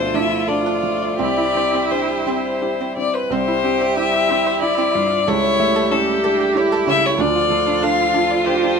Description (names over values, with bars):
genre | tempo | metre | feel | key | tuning
neoclassical piano and strings | 83-97 BPM | 3/4 | rubato | C major | A4 = 441 Hz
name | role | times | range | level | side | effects
warm violin | melody | 0.0-8.8 s | A4 to F5 | -19 LUFS | left 6 dB | none
rich cello | second line | 0.0-8.8 s | C#4 to G4 | -24 LUFS | right 7 dB | none
felt-muted upright piano | accompaniment | 0.0-8.8 s | C2 to G4 | -24 LUFS | right 2 dB | none
rich viola | accompaniment | 0.0-8.8 s | E4 to G4 | -23 LUFS | right 2 dB | none
hand-pumped harmonium | sustained chords | 0.0-8.8 s | F3 to E5 | -27 LUFS | right 3 dB | none
string-like resonator pluck | arpeggios | 0.1-8.7 s | C4 to G5 | -27 LUFS | right 3 dB | chorus
room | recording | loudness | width
moderate studio ambience, RT60 0.5 s | minimal, uncompressed stereo recording | -16 LUFS | side -6 dB against mid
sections
0.0-3.3 A section; 3.3-8.8 B section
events
none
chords
0.0 Dm; 1.2 C; 5.3 A7/C#; 7.2 Dm